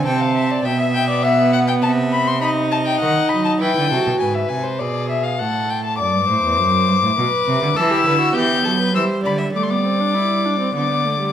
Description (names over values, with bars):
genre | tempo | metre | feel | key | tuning
classical, baroque-style fugue for string quartet | 101 BPM | 3/4 | straight | unclear | A4 = 440 Hz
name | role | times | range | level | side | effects
warm violin | melody | 0.0-11.3 s | C5 to G6 | -19 LUFS | left 6 dB | none
rich violin | second line | 0.0-11.3 s | F#4 to G5 | -24 LUFS | left 1 dB | none
warm viola | accompaniment | 0.0-4.2, 7.8-11.3 s | G3 to F#4 | -21 LUFS | right 4 dB | none
rich cello | bass | 0.0-11.3 s | E2 to G3 | -22 LUFS | right 3 dB | none
room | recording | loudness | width
wet recital hall reverb, RT60 1.4 s | none | -16 LUFS | side -9 dB against mid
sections
0.0-4.2 A section; 4.2-11.3 B section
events
none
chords
0.1 Am/C; 0.7 Em/B; 1.8 Am/C (rootless); 2.4 B (rootless); 3.6 Em; 4.2 E7/G#; 5.4 F#m/A; 6.0 D7; 7.2 Bm; 7.8 Em; 9.5 Dsus4/G; 10.8 D5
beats
0.06 | 0.65 1.24 1.83 | 2.42 3.02 3.61 | 4.21 4.81 5.40 | 6.00 6.59 7.18 | 7.77 8.36 8.95 | 9.55 10.15 10.75